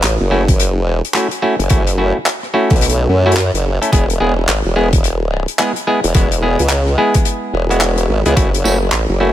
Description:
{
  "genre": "glitch hop",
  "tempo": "108 BPM",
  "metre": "4/4",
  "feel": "swing 61% on 16ths",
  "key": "F# minor",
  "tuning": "A4 = 440 Hz",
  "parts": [
    { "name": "formant-sweep wobble bass", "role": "bass", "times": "0.0-9.3 s", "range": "E1 to F#2", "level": "-15 LUFS", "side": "equal", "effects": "chorus, tube saturation" },
    { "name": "open jazz drum kit", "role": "drums", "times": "0.0-9.1 s", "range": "handclaps, hi-hat, rim click, tambourine", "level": "-20 LUFS", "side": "left 1 dB", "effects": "none" },
    { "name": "clav", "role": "stabs", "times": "0.3-9.3 s", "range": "G#3 to A4", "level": "-17 LUFS", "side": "equal", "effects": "sidechain pumping, ping-pong delay" },
    { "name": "electronic kick drum", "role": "drums", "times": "0.5-8.5 s", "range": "none", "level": "-13 LUFS", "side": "equal", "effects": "overdrive" }
  ],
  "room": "little or no reverb",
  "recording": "none",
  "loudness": "-12 LUFS",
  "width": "side -12 dB against mid",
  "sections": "0.0-9.3 A section",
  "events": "none",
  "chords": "0.0 F#m7; 3.9 E; 8.4 F#m7"
}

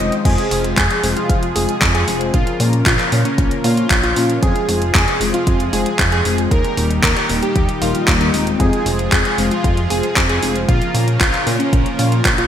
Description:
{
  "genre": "italo disco",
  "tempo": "115 BPM",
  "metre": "4/4",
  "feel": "straight",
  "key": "F minor",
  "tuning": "A4 = 440 Hz",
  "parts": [
    { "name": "wide unison lead", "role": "melody", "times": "0.0-12.5 s", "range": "Db4 to Eb5", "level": "-21 LUFS", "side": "equal", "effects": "vintage 12-bit sampler grit, digital delay" },
    { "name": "warm analog pad", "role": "sustained chords", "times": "0.0-12.5 s", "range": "Bb2 to G5", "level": "-25 LUFS", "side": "equal", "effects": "chorus, tremolo" },
    { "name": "mellow synth brass", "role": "stabs", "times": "0.0-12.1 s", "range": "Bb2 to Eb5", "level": "-23 LUFS", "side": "left 3 dB", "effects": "chorus" },
    { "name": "chorused synth bass", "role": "bass", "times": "0.0-12.5 s", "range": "Eb1 to Bb2", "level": "-20 LUFS", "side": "equal", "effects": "tube saturation" },
    { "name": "gated 80s digital drum machine", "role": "drums", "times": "0.1-12.5 s", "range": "crash cymbal, handclaps, hi-hat", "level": "-20 LUFS", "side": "equal", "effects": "gated reverb, overdrive" },
    { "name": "electronic kick drum", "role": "drums", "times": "0.3-12.4 s", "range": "none", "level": "-18 LUFS", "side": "equal", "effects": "none" }
  ],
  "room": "moderate lush hall reverb, RT60 2.7 s",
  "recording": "bright 1980s-style digital production",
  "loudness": "-14 LUFS",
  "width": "side -9 dB against mid",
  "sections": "0.3-12.5 A section",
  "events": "none",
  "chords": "0.3 Fm; 2.3 Bbm; 4.4 Fm; 6.5 Eb; 8.6 Fm; 10.7 Bbm"
}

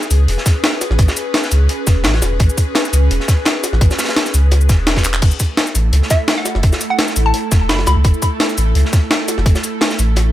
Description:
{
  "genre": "liquid drum and bass",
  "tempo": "170 BPM",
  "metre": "4/4",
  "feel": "swing 53% on 16ths",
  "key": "F# minor",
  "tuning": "A4 = 440 Hz",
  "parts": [
    { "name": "airy breathy pad", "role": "sustained chords", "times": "0.0-10.3 s", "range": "A3 to B4", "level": "-23 LUFS", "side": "equal", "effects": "chorus, sidechain pumping" },
    { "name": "breakbeat sampler-style drum kit", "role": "drums", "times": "0.0-10.2 s", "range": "cabasa, crash cymbal, handclaps, hi-hat, snare drum", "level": "-18 LUFS", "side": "left 1 dB", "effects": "none" },
    { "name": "saturated sub bass", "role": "bass", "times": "0.1-10.3 s", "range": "E1 to C#2", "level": "-14 LUFS", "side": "equal", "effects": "none" },
    { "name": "crunchy breakbeat drum kit", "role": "drums", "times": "0.1-10.3 s", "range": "hi-hat, snare drum", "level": "-24 LUFS", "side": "equal", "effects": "high-pass filter on hats, high-pass filter on snare, high-pass filter on room" },
    { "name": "electronic kick drum", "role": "drums", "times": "0.5-9.5 s", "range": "none", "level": "-13 LUFS", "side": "equal", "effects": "overdrive" },
    { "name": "hollow square pluck", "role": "melody", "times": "6.1-8.1 s", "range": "E5 to B5", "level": "-21 LUFS", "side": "equal", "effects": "chorus, digital delay" }
  ],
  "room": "little or no reverb",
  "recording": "none",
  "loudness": "-12 LUFS",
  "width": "side -14 dB against mid",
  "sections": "0.0-10.3 A section",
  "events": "drum fill 5.0",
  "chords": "0.0 Amaj9 (rootless); 5.2 F#m7"
}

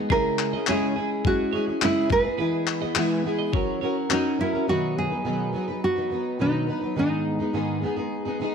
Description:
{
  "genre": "acoustic pop",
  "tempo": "105 BPM",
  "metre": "4/4",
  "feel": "straight",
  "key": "B major",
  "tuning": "A4 = 439 Hz",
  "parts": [
    { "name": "fingerpicked plugged-in steel-string acoustic guitar", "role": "accompaniment", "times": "0.0-8.5 s", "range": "G#2 to B4", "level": "-25 LUFS", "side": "equal", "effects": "double-tracked left and right" },
    { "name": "nylon-string guitar", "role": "melody", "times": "0.1-8.5 s", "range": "D#4 to B4", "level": "-26 LUFS", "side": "right 2 dB", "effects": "none" },
    { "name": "twelve-string electric guitar", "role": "arpeggios", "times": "0.1-4.0 s", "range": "G#4 to E5", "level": "-35 LUFS", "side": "right 13 dB", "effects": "wide subtle chorus" },
    { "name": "dusty soul sampler-style drum kit", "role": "drums", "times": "0.1-4.2 s", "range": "handclaps, kick drum", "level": "-27 LUFS", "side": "left 4 dB", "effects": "overdrive" }
  ],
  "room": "light reverb, small room ambience",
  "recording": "1960s-style stereo",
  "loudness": "-22 LUFS",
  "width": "side -6 dB against mid",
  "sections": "0.0-4.7 A section; 4.7-8.5 B section",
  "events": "none",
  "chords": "0.1 C#m; 2.1 E; 3.5 F#; 4.7 B; 7.0 G#m"
}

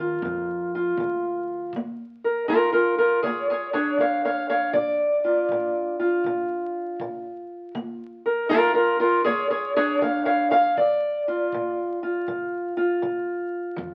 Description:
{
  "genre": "acoustic country blues, solo or duo",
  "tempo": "80 BPM",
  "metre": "4/4",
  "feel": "swing 64% on 8ths",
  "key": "Bb major",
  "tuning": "A4 = 441 Hz",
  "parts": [
    { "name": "fingerpicked steel-string acoustic guitar", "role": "melody", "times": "0.0-13.9 s", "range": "Bb2 to F5", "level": "-24 LUFS", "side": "equal", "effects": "none" },
    { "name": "upright bass", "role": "bass", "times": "0.0-1.7, 13.8-13.9 s", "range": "D2 to F2", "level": "-41 LUFS", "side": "equal", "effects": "none" },
    { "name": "kick drum", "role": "drums", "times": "0.2-13.9 s", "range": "none", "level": "-51 LUFS", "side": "equal", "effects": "none" }
  ],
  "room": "wet club reverb, RT60 0.7 s",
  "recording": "very old 78 rpm record, vinyl crackle",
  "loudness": "-24 LUFS",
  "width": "mono",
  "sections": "0.0-1.7 A section; 1.7-13.9 B section",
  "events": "steel-string acoustic guitar solo 1.7-13.9",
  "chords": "0.0 Bb"
}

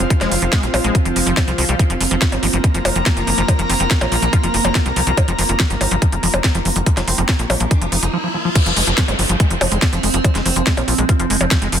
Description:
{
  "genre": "psychedelic trance",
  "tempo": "142 BPM",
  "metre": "4/4",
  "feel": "straight",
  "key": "unclear",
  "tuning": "A4 = 439 Hz",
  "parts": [
    { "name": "evolving wavetable pad", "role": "sustained chords", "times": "0.0-11.8 s", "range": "F3 to C4", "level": "-25 LUFS", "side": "right 4 dB", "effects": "phaser, built-in reverb, vintage 12-bit sampler grit, sidechain pumping" },
    { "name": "liquid acid bass", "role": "riff", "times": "0.0-11.8 s", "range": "F3 to Ab3", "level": "-24 LUFS", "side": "left 1 dB", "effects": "chorus, auto-pan, sidechain pumping, dub echo" },
    { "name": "tight sequencer bass", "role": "bass", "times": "0.0-11.8 s", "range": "F1 to C2", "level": "-20 LUFS", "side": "equal", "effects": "none" },
    { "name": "techno drum kit", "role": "drums", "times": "0.0-11.8 s", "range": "crash cymbal, hi-hat, percussion blips, snare drum", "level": "-20 LUFS", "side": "equal", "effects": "none" },
    { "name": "airy breathy pad", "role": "texture", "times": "0.0-8.2 s", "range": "C4 to Bb5", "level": "-23 LUFS", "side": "left 1 dB", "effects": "chorus, sidechain pumping" },
    { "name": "electronic kick drum", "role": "drums", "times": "0.1-11.6 s", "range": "none", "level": "-17 LUFS", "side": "equal", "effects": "none" },
    { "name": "resonant blip pluck", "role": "second line", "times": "3.7-4.5, 7.1-7.2, 10.5-11.3 s", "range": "C4 to F4", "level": "-33 LUFS", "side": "left 4 dB", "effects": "none" },
    { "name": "riser and downlifter", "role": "sound effects", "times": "7.0-11.8 s", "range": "none", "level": "-25 LUFS", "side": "equal", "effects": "none" }
  ],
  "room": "light reverb, digital ambience",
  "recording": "dense, heavily limited modern master",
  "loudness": "-14 LUFS",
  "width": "side -9 dB against mid",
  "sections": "0.0-8.6 A section; 8.6-11.8 B section",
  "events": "riser 7.0-8.6; break 8.1-8.6; drop 8.6-11.8",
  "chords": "0.0 F5"
}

